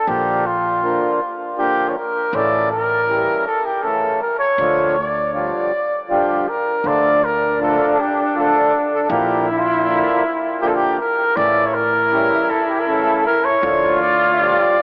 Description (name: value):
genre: klezmer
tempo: 80 BPM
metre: 3/4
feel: straight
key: D harmonic minor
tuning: A4 = 441 Hz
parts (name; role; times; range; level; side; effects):
- mellow cornet; melody; 0.0-14.8 s; F4 to E5; -20 LUFS; equal; tape echo
- mellow accordion; accompaniment; 0.1-14.8 s; C#3 to Bb3; -24 LUFS; equal; none
- upright bass; bass; 0.1-14.5 s; A1 to D2; -35 LUFS; equal; none
- clear trombone; second line; 6.9-14.8 s; D4 to F4; -23 LUFS; equal; tape echo
room: wet church reverb, RT60 3.7 s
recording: dreamy mix soaked in reverb, AM radio sound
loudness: -18 LUFS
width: mono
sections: 0.0-6.8 A section; 6.8-14.8 A section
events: none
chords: 0.1 Bb; 2.3 A; 4.6 Dm; 9.1 Bb; 11.4 A; 13.6 Dm